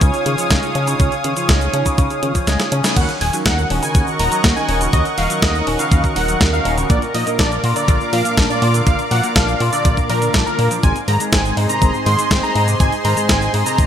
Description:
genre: italo disco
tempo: 122 BPM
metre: 4/4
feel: straight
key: Eb minor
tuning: A4 = 440 Hz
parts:
  - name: lush unison pad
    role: sustained chords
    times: 0.0-13.9 s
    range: Ab4 to Eb6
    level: -22 LUFS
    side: equal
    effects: chorus
  - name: electric guitar with an envelope filter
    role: arpeggios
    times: 0.0-13.9 s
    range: C3 to F4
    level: -25 LUFS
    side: left 4 dB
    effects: spring reverb, ping-pong delay
  - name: mellow synth brass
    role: stabs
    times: 0.0-13.9 s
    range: Ab2 to Db5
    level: -25 LUFS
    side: right 3 dB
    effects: chorus
  - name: chorused synth bass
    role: bass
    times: 0.0-13.9 s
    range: Eb1 to Db3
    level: -20 LUFS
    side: equal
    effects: tube saturation
  - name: clean 12-bit digital drum machine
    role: drums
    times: 0.0-13.9 s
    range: cabasa, crash cymbal, hi-hat, snare drum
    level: -21 LUFS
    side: equal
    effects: none
  - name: electronic kick drum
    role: drums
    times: 0.0-13.9 s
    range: none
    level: -16 LUFS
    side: equal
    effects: none
  - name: wide unison lead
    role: melody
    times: 3.0-13.9 s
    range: Bb4 to C6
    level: -21 LUFS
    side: equal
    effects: digital delay
room: moderate plate reverb, RT60 2.0 s, digital ambience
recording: bright 1980s-style digital production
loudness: -14 LUFS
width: side -9 dB against mid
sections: 0.0-3.0 A section; 3.0-13.9 B section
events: kick drops out 2.5-3.0; drum fill 2.5-3.0; band accent 2.8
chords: 0.0 Dbadd9; 3.0 Ebm7; 6.9 Bb; 10.8 Ab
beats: 0.01 0.51 | 1.00 1.49 1.98 2.47 | 2.96 3.46 3.95 4.44 | 4.93 5.42 5.92 6.41 | 6.90 7.39 7.88 8.38 | 8.87 9.36 9.85 10.34 | 10.83 11.32 11.82 12.31 | 12.80 13.29 13.78

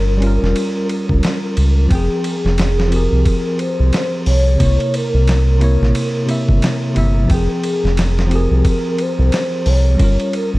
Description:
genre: trip hop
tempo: 89 BPM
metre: 4/4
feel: swing 59% on 16ths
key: F harmonic minor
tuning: A4 = 437 Hz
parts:
  - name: pure breathy sine lead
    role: melody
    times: 0.0-10.5 s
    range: Ab4 to Db5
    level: -23 LUFS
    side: equal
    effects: analog chorus, cassette tape, tape echo
  - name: bell-like tine electric piano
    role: accompaniment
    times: 0.0-10.6 s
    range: C3 to G5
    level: -20 LUFS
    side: equal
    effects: tremolo
  - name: round analog bass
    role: bass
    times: 0.0-10.6 s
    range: F1 to Db2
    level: -14 LUFS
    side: equal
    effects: tube saturation
  - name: flickering grainy texture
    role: texture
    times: 0.0-10.6 s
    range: Bb4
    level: -33 LUFS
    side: equal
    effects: built-in reverb
  - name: dusty soul sampler-style drum kit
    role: drums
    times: 0.2-10.5 s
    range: hi-hat, kick drum, ride cymbal, snare drum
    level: -21 LUFS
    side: equal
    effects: small room ambience
room: little or no reverb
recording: dark, warm production, vinyl crackle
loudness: -13 LUFS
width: side -20 dB against mid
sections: 0.0-10.6 A section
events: none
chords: 0.0 Gm7b5; 1.9 Fmadd9; 4.6 C7b9; 7.3 Fmadd9; 10.0 Gm7b5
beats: 0.56 1.23 | 1.91 2.58 3.25 3.93 | 4.60 5.28 5.95 6.63 | 7.30 7.97 8.65 9.32 | 10.00

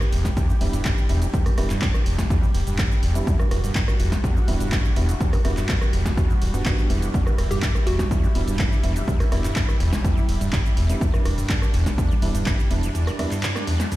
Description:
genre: acid house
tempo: 124 BPM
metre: 4/4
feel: straight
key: unclear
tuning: A4 = 439 Hz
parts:
  - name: hollow square pluck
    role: melody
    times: 0.0-0.4, 7.5-8.2 s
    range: F#4 to G4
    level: -33 LUFS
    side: equal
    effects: lush chorus, tape echo
  - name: lush unison pad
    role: sustained chords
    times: 0.0-14.0 s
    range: G3 to G4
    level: -32 LUFS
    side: equal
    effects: chorus, sidechain pumping
  - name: punchy analog drum machine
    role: drums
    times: 0.0-14.0 s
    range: handclaps, hi-hat, ride cymbal, rim click, shaker, snare drum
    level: -30 LUFS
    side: right 1 dB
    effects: overdrive
  - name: acid bass, saw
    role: riff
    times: 0.1-14.0 s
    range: E2 to G3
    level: -26 LUFS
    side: equal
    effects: overdrive, analog chorus, sidechain pumping, digital delay
  - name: warm sub bass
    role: bass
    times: 0.1-12.9 s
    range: D1 to E1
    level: -26 LUFS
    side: equal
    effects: sidechain pumping
  - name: electronic kick drum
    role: drums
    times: 0.2-12.6 s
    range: none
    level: -21 LUFS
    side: equal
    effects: none
  - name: dark grand piano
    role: stabs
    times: 0.6-13.3 s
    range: G3 to F#4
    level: -31 LUFS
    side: right 1 dB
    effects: digital delay
room: digital ambience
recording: played on a big sound system in a bare room, stone room reverb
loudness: -19 LUFS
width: side -16 dB against mid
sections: 0.0-14.0 A section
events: none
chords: 0.0 Em7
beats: 0.37 0.85 | 1.34 1.82 2.30 2.79 | 3.27 3.75 4.24 4.72 | 5.21 5.69 6.17 6.66 | 7.14 7.63 8.11 8.59 | 9.08 9.56 10.04 10.53 | 11.01 11.50 11.98 12.46 | 12.95 13.43 13.92

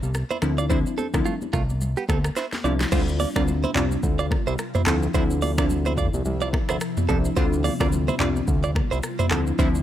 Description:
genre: afrobeats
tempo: 108 BPM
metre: 4/4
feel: swing 58% on 16ths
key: D minor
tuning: A4 = 436 Hz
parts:
  - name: fat analog bass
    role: bass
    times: 0.0-9.8 s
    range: C2 to D2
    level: -25 LUFS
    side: equal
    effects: none
  - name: afro-pop drum kit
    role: drums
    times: 0.0-9.8 s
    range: crash cymbal, finger snaps, handclaps, hi-hat, kick drum, rim click, shaker, snare drum, toms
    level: -25 LUFS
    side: equal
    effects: none
  - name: direct-recorded clean electric guitar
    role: riff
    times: 0.3-9.7 s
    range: A3 to D5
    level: -29 LUFS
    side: right 6 dB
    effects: tape echo
  - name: congas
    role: percussion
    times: 0.3-9.7 s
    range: none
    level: -35 LUFS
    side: left 4 dB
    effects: none
  - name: glassy wavetable pluck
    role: accompaniment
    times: 0.4-9.8 s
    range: F3 to F4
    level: -26 LUFS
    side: left 2 dB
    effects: chorus
  - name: ethereal airy pad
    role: sustained chords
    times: 3.7-9.8 s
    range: C3 to F4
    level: -33 LUFS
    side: left 1 dB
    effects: ensemble chorus, built-in reverb
room: little or no reverb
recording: none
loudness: -21 LUFS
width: side -11 dB against mid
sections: 0.0-2.9 A section; 2.9-9.8 B section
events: drum fill 2.4-2.9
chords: 0.4 Dm9; 2.9 G7sus4; 4.9 Dm9; 7.4 G7sus4; 9.3 Dm9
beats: 0.14 | 0.70 1.25 1.81 2.37 | 2.92 3.48 4.03 4.59 | 5.14 5.70 6.25 6.81 | 7.37 7.92 8.48 9.03 | 9.59

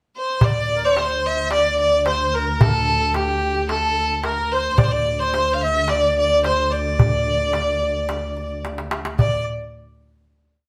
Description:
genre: Arabic maqam ensemble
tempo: 110 BPM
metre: 4/4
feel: straight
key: D maqam bayati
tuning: A4 = 441 Hz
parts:
  - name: rich violin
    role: melody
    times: 0.2-9.4 s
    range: G4 to F5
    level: -22 LUFS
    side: equal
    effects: none
  - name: melodica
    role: second line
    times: 0.4-9.4 s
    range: G4 to E5-50c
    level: -29 LUFS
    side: equal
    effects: none
  - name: warm double bass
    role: drone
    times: 0.4-9.2 s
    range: D2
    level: -30 LUFS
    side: equal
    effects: none
  - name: darbuka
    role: percussion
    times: 0.4-9.4 s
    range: none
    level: -23 LUFS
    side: equal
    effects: none
room: wet studio reverb, RT60 0.8 s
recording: band playing live in one room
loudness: -20 LUFS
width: mono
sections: 0.0-0.4 pickup bar; 0.4-9.2 A section; 9.2-10.7 final note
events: drum fill 8.6-9.2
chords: none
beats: | 0.42 0.96 1.51 2.06 | 2.61 3.16 3.70 4.25 | 4.80 5.35 5.90 6.45 | 6.99 7.54 8.09 8.64 | 9.19

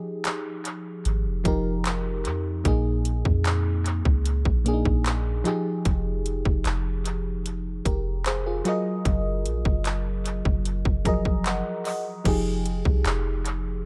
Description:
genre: contemporary R&B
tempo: 75 BPM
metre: 4/4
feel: straight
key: unclear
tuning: A4 = 441 Hz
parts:
  - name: FM electric piano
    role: accompaniment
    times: 0.0-13.9 s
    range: Bb2 to Bb5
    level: -31 LUFS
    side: equal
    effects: none
  - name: trap drum kit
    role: drums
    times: 0.2-13.6 s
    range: crash cymbal, handclaps, hi-hat, kick drum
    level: -30 LUFS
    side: equal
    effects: vintage 12-bit sampler grit, analog delay
  - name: soft 808-style bass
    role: bass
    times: 1.1-13.9 s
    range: F1 to F2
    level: -29 LUFS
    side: equal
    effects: none
room: digital ambience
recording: echo-heavy mix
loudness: -26 LUFS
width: mono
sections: 0.0-12.3 A section; 12.3-13.9 A section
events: break 0.0-1.1; FM electric piano fill 10.7-12.3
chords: 0.0 Fm9; 2.7 Bb7sus4; 5.5 Fm9; 8.7 Gbmaj13; 12.3 Fm9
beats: 0.25 1.05 1.85 | 2.65 3.45 4.25 5.05 | 5.85 6.65 7.45 8.25 | 9.05 9.85 10.65 11.45 | 12.25 13.05 13.85

